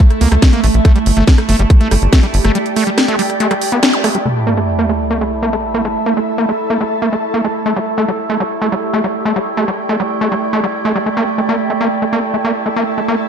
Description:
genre	psychedelic trance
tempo	141 BPM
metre	4/4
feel	straight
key	unclear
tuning	A4 = 440 Hz
part	overtone-sweeping drone	sustained chords	0.0-13.3 s	A3 to E4	-20 LUFS	right 5 dB	chorus, built-in reverb, sidechain pumping
part	overdriven acid bass	riff	0.0-13.2 s	G3 to D4	-18 LUFS	equal	distortion, auto-pan, sidechain pumping, ping-pong delay
part	drum and bass drum kit	drums	0.0-4.2 s	hi-hat, rim click, snare drum	-17 LUFS	left 1 dB	overdrive
part	electronic kick drum	drums	0.0-2.2 s	none	-8 LUFS	equal	overdrive
part	ethereal airy pad	texture	0.0-13.3 s	G4 to A5	-22 LUFS	left 1 dB	ensemble chorus, built-in reverb, sidechain pumping
part	tight sequencer bass	bass	0.2-2.5 s	G1 to C#2	-12 LUFS	equal	none
part	zap and sub drop	sound effects	3.9-6.0 s	none	-20 LUFS	equal	none
room	light reverb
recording	dark, warm production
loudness	-12 LUFS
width	side -7 dB against mid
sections	0.0-4.3 A section; 4.3-13.3 B section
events	drop 0.0-4.3; break 2.6-4.3; band accent 3.8; impact 4.3-6.0; filter sweep on acid bass 4.3-13.3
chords	0.0 A5; 0.8 G5; 4.3 A5; 7.7 G5; 11.1 A5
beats	0.00 0.42 | 0.85 1.27 1.70 2.13 | 2.55 2.98 3.40 3.83 | 4.25 4.68 5.10 5.53 | 5.96 6.38 6.81 7.23 | 7.66 8.08 8.51 8.93 | 9.36 9.79 10.21 10.64 | 11.06 11.49 11.91 12.34 | 12.76 13.19

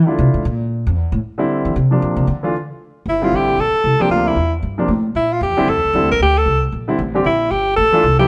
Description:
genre	modal jazz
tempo	229 BPM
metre	4/4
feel	swing 61% on 8ths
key	G dorian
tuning	A4 = 440 Hz
part	upright bass	bass	0.0-8.3 s	G1 to E3	-21 LUFS	equal	none
part	warm grand piano	accompaniment	0.1-8.3 s	C3 to G4	-21 LUFS	equal	none
part	bright alto saxophone	melody	3.1-8.3 s	E4 to Bb4	-18 LUFS	equal	none
room	moderate stone room reverb, RT60 1.1 s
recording	band playing live in one room, nothing above 10.5 kHz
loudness	-17 LUFS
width	mono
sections	0.0-3.1 A section; 3.1-8.3 B section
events	upright bass solo 0.0-3.1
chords	0.0 Gm69 (rootless); 3.1 Gm69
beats	0.18 0.44 0.70 | 0.96 1.22 1.49 1.75 | 2.01 2.27 2.53 2.79 | 3.05 3.32 3.58 3.84 | 4.10 4.36 4.63 4.89 | 5.15 5.41 5.67 5.94 | 6.20 6.46 6.72 6.99 | 7.25 7.51 7.77 8.03

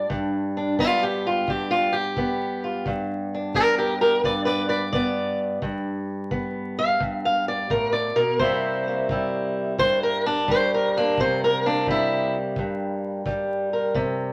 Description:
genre	acoustic country blues, solo or duo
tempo	87 BPM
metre	4/4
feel	swing 66% on 8ths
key	unclear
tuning	A4 = 442 Hz
part	fingerpicked swing-style acoustic guitar	melody	0.0-14.3 s	G2 to F5	-24 LUFS	equal	none
part	kick drum	drums	0.1-14.2 s	none	-36 LUFS	equal	none
room	wet studio reverb, RT60 0.8 s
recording	vinyl crackle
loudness	-24 LUFS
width	mono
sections	0.0-14.3 A section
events	steel-string acoustic guitar solo 0.0-14.3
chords	0.0 G; 8.4 C7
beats	| 0.11 0.80 1.49 2.18 | 2.87 3.56 4.25 4.94 | 5.63 6.32 7.01 7.71 | 8.40 9.09 9.79 10.48 | 11.17 11.87 12.56 13.26 | 13.95

